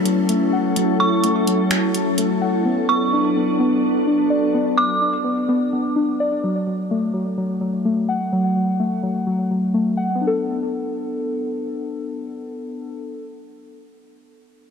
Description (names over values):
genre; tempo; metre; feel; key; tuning
hip hop, atmospheric cloud-rap; 127 BPM; 4/4; half-time; B minor; A4 = 444 Hz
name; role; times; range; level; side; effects
glassy FM pad; sustained chords; 0.0-4.5 s; F#3 to A4; -21 LUFS; equal; ensemble chorus, built-in reverb
muted felt-like synth keys; arpeggios; 0.0-13.3 s; F#3 to F#5; -21 LUFS; left 2 dB; chorus, low-pass filter, tape echo
smooth R&B drum kit; drums; 0.1-2.3 s; finger snaps, hi-hat; -26 LUFS; right 1 dB; none
dark detuned synth bell; melody; 1.0-5.0 s; C#6 to D6; -24 LUFS; right 3 dB; chorus, low-pass filter, tape echo
room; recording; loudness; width
moderate huge ambient reverb, RT60 6.4 s; none; -18 LUFS; side -6 dB against mid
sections
0.0-10.2 A section; 10.2-14.0 B section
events
break 0.0-2.7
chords
0.0 F#m7; 2.7 Bm7; 6.4 F#m; 10.2 Bm7